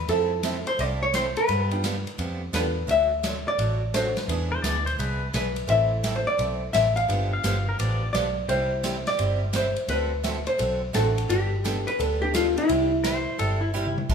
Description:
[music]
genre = country, western swing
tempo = 171 BPM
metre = 4/4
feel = swing 65% on 8ths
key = C major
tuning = A4 = 440 Hz
[part]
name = vintage hollow-body jazz guitar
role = melody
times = 0.0-13.7 s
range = E4 to F5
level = -24 LUFS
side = left 1 dB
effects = none
[part]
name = vintage muted picked electric bass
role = bass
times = 0.0-14.1 s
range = G1 to G2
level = -28 LUFS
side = equal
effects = none
[part]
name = picked swing-style acoustic guitar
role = accompaniment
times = 0.1-14.1 s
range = C3 to A4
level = -33 LUFS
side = right 5 dB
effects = none
[part]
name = tack piano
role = accompaniment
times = 0.1-14.1 s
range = G3 to A5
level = -35 LUFS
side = right 3 dB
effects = none
[part]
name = swinging big-band drum kit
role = drums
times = 0.1-14.1 s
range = crash cymbal, hi-hat, kick drum, ride cymbal, snare drum, toms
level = -33 LUFS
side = equal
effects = none
[part]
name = pedal steel guitar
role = second line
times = 4.5-8.1, 13.0-14.0 s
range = E4 to F5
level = -30 LUFS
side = left 3 dB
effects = none
[sound]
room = moderate large studio reverb, RT60 1.2 s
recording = band playing live in one room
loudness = -22 LUFS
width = side -6 dB against mid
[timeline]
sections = 0.0-14.1 A section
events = drum fill 13.7-14.1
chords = 0.1 Fmaj7; 1.5 G7; 2.9 D; 4.3 E7; 5.7 Am; 7.1 G7; 8.5 C; 9.9 D7; 11.3 Gadd9; 12.7 C

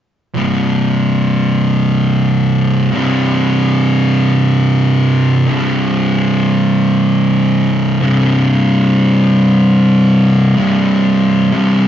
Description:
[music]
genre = metal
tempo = free time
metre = none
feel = none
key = unclear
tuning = A4 = 440 Hz
[part]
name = thick fuzz guitar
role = solo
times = 0.3-11.9 s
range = C2 to C3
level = -10 LUFS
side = equal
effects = distortion
[sound]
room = wet stone room reverb, RT60 1.4 s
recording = rough rehearsal-room recording, warm saturation, nothing above 7.6 kHz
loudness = -10 LUFS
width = side -10 dB against mid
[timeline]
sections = 0.4-10.6 A section; 10.6-11.9 B section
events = none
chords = 0.4 C5

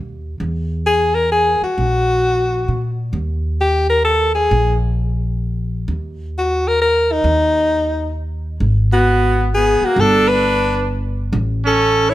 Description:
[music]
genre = jazz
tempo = 132 BPM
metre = 3/4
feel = swing 66% on 8ths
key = unclear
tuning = A4 = 440 Hz
[part]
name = upright bass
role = bass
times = 0.0-12.1 s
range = G1 to Bb2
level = -19 LUFS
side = equal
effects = none
[part]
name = bright alto saxophone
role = melody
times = 0.9-12.1 s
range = Eb4 to C#5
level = -15 LUFS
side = left 1 dB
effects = none
[part]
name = warm trumpet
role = second line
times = 8.9-12.1 s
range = A#3 to E4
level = -20 LUFS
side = right 4 dB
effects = none
[sound]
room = moderate large studio reverb, RT60 1.4 s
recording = none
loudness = -14 LUFS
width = side -15 dB against mid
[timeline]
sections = 0.0-8.6 A section; 8.6-12.1 B section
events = none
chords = 0.4 E; 1.8 Gb/Bb; 3.1 N.C.; 8.6 G#m7; 10.0 G; 11.3 A

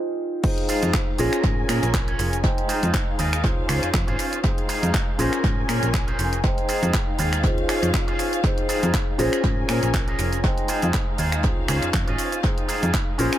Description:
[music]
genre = filtered disco house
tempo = 120 BPM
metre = 4/4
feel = swing 56% on 16ths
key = F minor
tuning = A4 = 439 Hz
[part]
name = dark concert grand piano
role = accompaniment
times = 0.0-13.4 s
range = Db4 to C6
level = -26 LUFS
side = left 1 dB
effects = phaser, sidechain pumping, low-pass filter, tape echo
[part]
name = dark symphonic string section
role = sustained chords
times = 0.4-13.4 s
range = Ab3 to Ab5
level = -31 LUFS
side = left 1 dB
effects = sidechain pumping, low-pass filter
[part]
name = electronic kick drum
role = drums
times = 0.4-13.0 s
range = none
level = -24 LUFS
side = equal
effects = none
[part]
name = house drum kit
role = drums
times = 0.4-13.4 s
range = crash cymbal, finger snaps, handclaps, hi-hat, shaker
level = -29 LUFS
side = right 1 dB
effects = sidechain pumping on cymbals, sidechain pumping on perc, sidechain pumping on hats, tape echo
[part]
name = electric guitar with an envelope filter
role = riff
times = 0.7-13.4 s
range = Db4 to Eb5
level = -29 LUFS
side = right 2 dB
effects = sidechain pumping, low-pass filter, tape echo
[part]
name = slap-like FM bass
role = bass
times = 0.8-13.3 s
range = F1 to Bb2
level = -25 LUFS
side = equal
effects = sidechain pumping, low-pass filter
[sound]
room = light reverb, digital ambience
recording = echo-heavy mix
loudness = -20 LUFS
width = side -12 dB against mid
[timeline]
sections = 0.4-13.4 A section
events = break 0.0-0.4; drop 0.4-13.4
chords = 0.4 Fm7; 1.2 Bbm7; 2.4 Fm7; 3.4 Dbmaj7; 4.4 Fm7; 5.2 Bbm7; 6.4 Fm7; 7.4 Dbmaj7; 8.4 Fm7; 9.2 Bbm7; 10.4 Fm7; 11.4 Dbmaj7; 12.4 Fm7

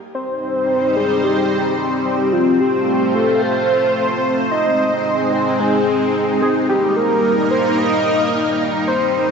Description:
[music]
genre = synthwave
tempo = 110 BPM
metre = 4/4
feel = straight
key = C minor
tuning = A4 = 440 Hz
[part]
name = warm velvety synth lead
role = melody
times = 0.1-9.3 s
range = F4 to Eb5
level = -18 LUFS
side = equal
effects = chorus, tremolo, shimmer reverb, tape echo
[part]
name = lush unison pad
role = sustained chords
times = 0.1-9.3 s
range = G3 to C5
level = -18 LUFS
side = left 1 dB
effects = chorus, phaser, shimmer reverb
[sound]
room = wet lush hall reverb, RT60 2.7 s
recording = dreamy mix soaked in reverb, nothing above 7.9 kHz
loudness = -15 LUFS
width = side -5 dB against mid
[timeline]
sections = 0.1-9.3 A section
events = none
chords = 0.1 Cm; 2.3 F; 4.5 Ab; 6.7 Eb

